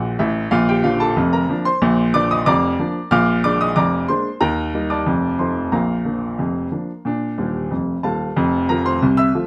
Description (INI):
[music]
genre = ragtime piano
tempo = 92 BPM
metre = 2/4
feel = straight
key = Bb major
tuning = A4 = 441 Hz
[part]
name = clear upright piano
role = solo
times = 0.0-9.5 s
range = Eb1 to F6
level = -19 LUFS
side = equal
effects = none
[sound]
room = moderate studio reverb, RT60 0.6 s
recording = none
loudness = -19 LUFS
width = mono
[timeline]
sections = 0.0-8.4 A section; 8.4-9.5 B section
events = upright piano fill 7.4-8.4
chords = 0.0 Bb(b5, no3); 0.5 Bb; 3.1 Bb7; 4.4 Eb; 5.1 F7; 5.7 Bb; 8.4 F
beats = | 0.52 1.17 | 1.82 2.46 | 3.11 3.76 | 4.42 5.07 | 5.72 6.38 | 7.04 7.70 | 8.36 9.02